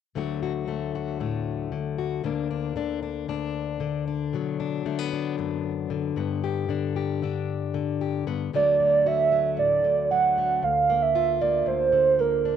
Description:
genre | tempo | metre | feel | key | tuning
indie folk with a building arrangement | 115 BPM | 4/4 | straight | D major | A4 = 440 Hz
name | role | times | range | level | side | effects
fingerpicked plugged-in steel-string acoustic guitar | accompaniment | 0.1-12.6 s | D2 to G4 | -28 LUFS | left 8 dB | cassette tape
warbly nostalgic lead | melody | 8.6-12.6 s | Bb4 to F#5 | -20 LUFS | right 5 dB | chorus, cassette tape, tape echo
room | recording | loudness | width
moderate small room reverb, RT60 0.6 s | home recording on cassette | -23 LUFS | side -8 dB against mid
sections
0.2-8.5 A section; 8.5-12.6 B section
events
none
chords
0.2 D; 2.2 Bb/D; 4.3 Bm; 6.2 G; 8.5 D; 10.6 Bb/D

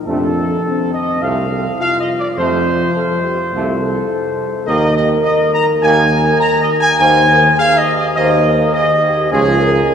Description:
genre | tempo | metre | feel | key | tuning
classical, ceremonial fanfare | 104 BPM | 4/4 | straight | unclear | A4 = 436 Hz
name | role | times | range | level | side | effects
mellow French horn section | sustained chords | 0.0-9.9 s | C4 to C5 | -19 LUFS | left 1 dB | none
dark trumpet section | melody | 0.1-9.9 s | Ab4 to Bb5 | -15 LUFS | equal | none
warm trombone section | sustained chords | 0.1-9.5 s | C3 to Db4 | -24 LUFS | right 2 dB | none
clear tuba | bass | 0.1-9.8 s | C2 to F2 | -18 LUFS | right 1 dB | none
room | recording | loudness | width
wet cathedral reverb, RT60 6.2 s | recorded in a church or concert hall | -12 LUFS | side -7 dB against mid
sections
0.0-9.9 A section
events
none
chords
0.1 F; 4.7 Absus2/Eb; 9.3 Db

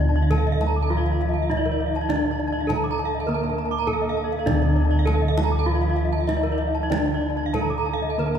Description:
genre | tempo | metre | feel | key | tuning
Balinese gamelan | 92-101 BPM | 4/4 | straight | D pelog | A4 = 445 Hz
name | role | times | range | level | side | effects
gamelan-type bronze metallophone | melody | 0.0-8.4 s | D4 to Bb4-20c | -27 LUFS | right 2 dB | none
gamelan-type bronze metallophone | accompaniment | 0.0-8.4 s | D3 to Bb3-20c | -33 LUFS | right 3 dB | none
gamelan-type bronze metallophone | arpeggios | 0.0-8.4 s | Bb4-20c to D6 | -28 LUFS | left 5 dB | none
gamelan-type bossed gongs | bass | 0.0-8.4 s | D2 to Eb4+20c | -24 LUFS | equal | none
gamelan-type bronze metallophone | arpeggios | 0.2-8.3 s | D5 to D6 | -31 LUFS | right 6 dB | none
kendang | percussion | 0.3-8.4 s | none | -32 LUFS | right 1 dB | none
room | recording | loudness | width
wet cathedral reverb, RT60 5.8 s | recorded in a church or concert hall | -20 LUFS | side -8 dB against mid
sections
0.0-8.4 A section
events
none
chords
none

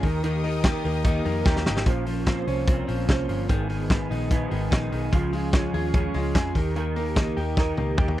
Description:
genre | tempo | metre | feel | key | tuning
jangly indie pop | 147 BPM | 4/4 | straight | Eb mixolydian | A4 = 442 Hz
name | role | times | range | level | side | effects
electric guitar through a small old amp | accompaniment | 0.0-8.2 s | Ab2 to C5 | -30 LUFS | right 8 dB | ensemble chorus
bright studio string section | sustained chords | 0.0-1.8 s | Bb4 to Eb6 | -39 LUFS | left 6 dB | none
direct-recorded clean electric guitar | arpeggios | 0.0-8.2 s | Eb3 to Ab4 | -29 LUFS | left 6 dB | none
vintage muted picked electric bass | bass | 0.0-8.2 s | G1 to F2 | -28 LUFS | equal | none
loose indie drum kit | drums | 0.0-8.2 s | hi-hat, kick drum, ride cymbal, snare drum, toms | -23 LUFS | equal | none
room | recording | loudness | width
little or no reverb | dry, close 1970s-style studio recording | -22 LUFS | side -14 dB against mid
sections
0.0-1.9 A section; 1.9-8.2 B section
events
drum fill 1.5-1.9, 7.6-8.2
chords
0.0 Eb; 1.9 Bbmadd9; 3.5 Abm; 5.1 Db; 6.6 Eb

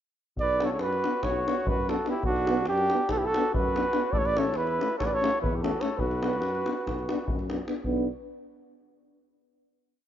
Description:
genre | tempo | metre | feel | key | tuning
balkan folk, Balkan brass band | 289 BPM (eighths) | 9/8 | straight | B minor | A4 = 440 Hz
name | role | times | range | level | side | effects
mellow flugelhorn | melody | 0.4-7.5 s | F#4 to D5 | -27 LUFS | right 2 dB | none
mellow trumpet | second line | 0.4-7.5 s | D4 to B4 | -36 LUFS | left 3 dB | none
mellow tuba | bass | 0.4-8.1 s | A1 to F#2 | -33 LUFS | left 1 dB | none
davul | percussion | 0.4-8.1 s | none | -32 LUFS | left 1 dB | none
dark euphonium | accompaniment | 0.6-8.1 s | C#4 to D4 | -35 LUFS | left 8 dB | none
warm euphonium | accompaniment | 0.6-8.1 s | A3 to B3 | -36 LUFS | right 6 dB | none
room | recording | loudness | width
light reverb, studio reverb | rough home demo mix, nothing above 7.5 kHz | -25 LUFS | side -10 dB against mid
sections
0.4-7.9 A section; 7.9-9.7 final chord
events
none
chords
0.4 Bm; 4.1 A; 6.0 Bm

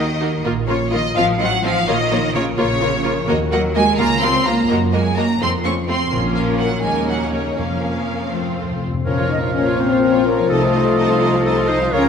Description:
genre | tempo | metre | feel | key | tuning
classical | 84 BPM (dotted quarters) | 6/8 | straight | Bb minor from 3.3 s | A4 = 440 Hz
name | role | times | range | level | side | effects
warm symphonic violin section | melody | 0.0-12.0 s | Db5 to Db6 | -23 LUFS | left 1 dB | none
warm symphonic violin section | second line | 0.0-12.1 s | Db4 to F5 | -26 LUFS | left 3 dB | none
rich symphonic viola section | accompaniment | 0.0-12.1 s | A3 to Gb4 | -24 LUFS | right 2 dB | none
concert harp | arpeggios | 0.0-12.1 s | F2 to Bb5 | -26 LUFS | left 7 dB | none
rich symphonic cello section | bass | 0.0-12.1 s | Bb2 to Db4 | -24 LUFS | right 3 dB | none
rich symphonic double bass section | bass | 0.0-12.1 s | A1 to Gb2 | -25 LUFS | right 4 dB | none
timpani | percussion | 6.1-9.8 s | F2 to Bb2 | -27 LUFS | left 2 dB | none
clear clarinet | second line | 9.1-12.1 s | Eb4 to C5 | -24 LUFS | equal | none
mellow flute section | second line | 9.1-12.1 s | A4 to Eb5 | -24 LUFS | left 2 dB | none
warm oboe | second line | 9.1-12.1 s | Db5 to F5 | -25 LUFS | right 4 dB | none
mellow bassoon | accompaniment | 9.1-12.1 s | F3 to Bb3 | -22 LUFS | left 2 dB | none
mellow French horn section | sustained chords | 9.1-12.1 s | A3 to Eb4 | -19 LUFS | left 6 dB | none
room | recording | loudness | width
wet scoring stage reverb, RT60 1.8 s | none | -15 LUFS | side -7 dB against mid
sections
0.0-9.1 A section; 9.1-12.1 B section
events
timpani fill 8.3-9.1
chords
0.4 Bbm; 1.2 F7/A; 1.9 Bbm; 3.3 Ebm; 4.0 Bbm/Db; 4.7 Ebm/Gb; 5.4 F; 6.1 Bbm; 6.8 Ebm7; 7.6 Bbm/F; 8.3 F; 9.1 Bbm; 10.5 F7/C

